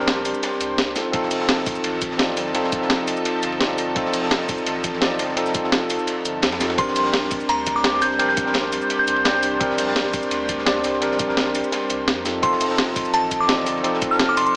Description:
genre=liquid drum and bass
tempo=170 BPM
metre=4/4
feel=straight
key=unclear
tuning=A4 = 444 Hz
part: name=tine electric piano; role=accompaniment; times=0.0-14.6 s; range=C4 to D5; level=-26 LUFS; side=equal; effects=dub echo
part: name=lush unison pad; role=sustained chords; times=0.0-14.6 s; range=F3 to C5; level=-31 LUFS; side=equal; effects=chorus, sidechain pumping
part: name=warm sub bass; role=bass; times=0.0-14.4 s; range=F1 to F2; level=-43 LUFS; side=equal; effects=tube saturation
part: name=crunchy breakbeat drum kit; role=drums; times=0.0-14.5 s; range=hi-hat, ride cymbal, snare drum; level=-32 LUFS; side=equal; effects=high-pass filter on cymbals, high-pass filter on hats, high-pass filter on snare, high-pass filter on room
part: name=breakbeat sampler-style drum kit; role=drums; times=0.1-14.5 s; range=hi-hat, shaker, snare drum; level=-25 LUFS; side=equal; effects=none
part: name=electronic kick drum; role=drums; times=1.1-14.1 s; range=none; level=-35 LUFS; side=equal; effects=none
part: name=glassy synth bell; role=melody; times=6.8-9.5, 12.4-14.5 s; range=A5 to G6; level=-24 LUFS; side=equal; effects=chorus, dub echo
room=light reverb, small room ambience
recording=small speaker sound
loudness=-21 LUFS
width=mono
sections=0.0-14.6 A section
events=none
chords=0.0 Bb69; 1.0 F7; 6.8 Bb69; 12.3 F7

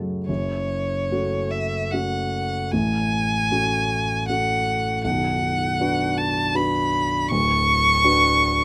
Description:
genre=classical, romantic duo for violin and grand piano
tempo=64-82 BPM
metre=3/4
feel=rubato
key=F# minor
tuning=A4 = 440 Hz
part: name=dark grand piano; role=accompaniment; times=0.0-8.6 s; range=B0 to B4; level=-26 LUFS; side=equal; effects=none
part: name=rich violin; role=melody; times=0.3-8.6 s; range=C#5 to C#6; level=-24 LUFS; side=equal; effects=none
room=little or no reverb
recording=close, detailed microphones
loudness=-22 LUFS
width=mono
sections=0.3-8.6 A section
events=none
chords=0.3 F#m; 2.7 F#m/A; 5.0 Bm; 7.3 Bm/D

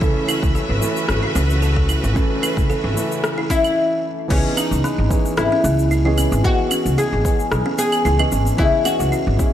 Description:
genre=organic downtempo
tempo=112 BPM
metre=4/4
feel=swing 54% on 16ths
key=C# minor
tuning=A4 = 439 Hz
part: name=felt-muted upright piano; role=accompaniment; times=0.0-9.5 s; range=E3 to D#5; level=-25 LUFS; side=right 2 dB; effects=sidechain pumping, ping-pong delay, slapback echo
part: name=clear studio string section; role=sustained chords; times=0.0-3.8 s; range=C#3 to E5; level=-26 LUFS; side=equal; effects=sidechain pumping
part: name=buzzing kalimba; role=arpeggios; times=0.0-9.5 s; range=E3 to A4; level=-26 LUFS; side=right 1 dB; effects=ping-pong delay, slapback echo
part: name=upright bass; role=bass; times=0.0-9.3 s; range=G#1 to C#2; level=-20 LUFS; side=equal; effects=sidechain pumping
part: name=deep house drum kit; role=drums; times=0.0-9.5 s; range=claves, crash cymbal, rim click, shaker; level=-26 LUFS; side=equal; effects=overdrive
part: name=electronic kick drum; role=drums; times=0.0-9.5 s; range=none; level=-20 LUFS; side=equal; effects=overdrive
part: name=oud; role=melody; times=3.5-9.5 s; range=C#4 to G#4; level=-20 LUFS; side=left 2 dB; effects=digital delay, slapback echo
room=moderate lush hall reverb, RT60 1.8 s, studio ambience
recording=big arena sound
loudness=-16 LUFS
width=side -11 dB against mid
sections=0.0-4.3 A section; 4.3-9.5 B section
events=stop 3.8-4.3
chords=0.0 A; 4.3 C#m7

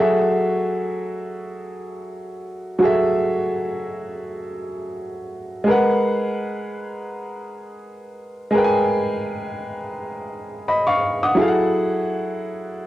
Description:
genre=R&B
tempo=free time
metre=none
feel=none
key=unclear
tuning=A4 = 441 Hz
part: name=clear upright piano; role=solo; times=0.0-12.9 s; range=F#3 to D#6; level=-20 LUFS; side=equal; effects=cassette tape
room=moderate spring reverb, RT60 2.0 s, small room ambience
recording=home recording on cassette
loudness=-19 LUFS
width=side -14 dB against mid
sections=0.0-11.4 A section; 11.4-12.9 A section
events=none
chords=0.0 F#m9; 5.7 G#m9; 11.4 F#m9

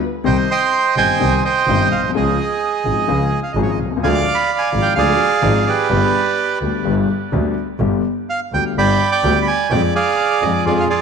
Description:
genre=tango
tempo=127 BPM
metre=4/4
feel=rubato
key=C harmonic minor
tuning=A4 = 440 Hz
part: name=warm concert grand piano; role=accompaniment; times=0.2-10.9 s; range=G1 to Ab4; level=-20 LUFS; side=left 8 dB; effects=none
part: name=clear double bass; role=bass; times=0.2-10.8 s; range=G1 to F2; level=-21 LUFS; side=right 3 dB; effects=none
part: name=bandoneon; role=melody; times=0.3-11.0 s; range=F4 to D6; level=-16 LUFS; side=right 5 dB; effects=tape echo
room=moderate echo chamber reverb, RT60 1.9 s, studio reverb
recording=1960s-style stereo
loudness=-14 LUFS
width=side -6 dB against mid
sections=0.3-11.0 A section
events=none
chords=0.3 Cm; 2.1 Db; 4.0 Ddim; 5.9 G; 9.7 Ddim/F

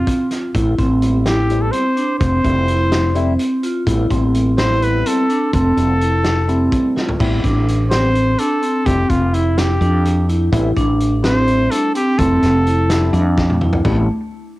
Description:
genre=progressive instrumental, band music in an uneven meter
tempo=253 BPM (eighths)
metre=7/8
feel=straight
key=A minor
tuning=A4 = 440 Hz
part: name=clear trumpet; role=melody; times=0.0-13.4 s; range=E4 to C5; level=-21 LUFS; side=equal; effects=cassette tape, plate reverb
part: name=vibraphone with medium hard mallets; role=arpeggios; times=0.0-14.1 s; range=A3 to F4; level=-18 LUFS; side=right 1 dB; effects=cassette tape, plate reverb, analog delay
part: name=fretless electric bass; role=bass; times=0.0-14.1 s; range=F1 to F2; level=-17 LUFS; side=equal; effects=none
part: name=loose indie drum kit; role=drums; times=0.1-14.0 s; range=crash cymbal, hi-hat, kick drum, snare drum, toms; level=-22 LUFS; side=equal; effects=cassette tape
part: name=barky tine electric piano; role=accompaniment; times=1.0-14.1 s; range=G3 to G4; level=-25 LUFS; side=left 3 dB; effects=phaser, cassette tape, plate reverb
room=light reverb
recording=home recording on cassette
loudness=-14 LUFS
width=side -18 dB against mid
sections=0.0-7.2 A section; 7.2-13.9 B section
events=drum fill 7.0, 13.4-13.9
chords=0.0 F5; 0.5 Am7; 2.2 Fmaj7; 3.9 Am7; 5.5 Fmaj7; 7.2 Am7; 8.9 Fmaj7(no3); 10.5 Am7; 12.2 Fmaj7; 13.9 Am7

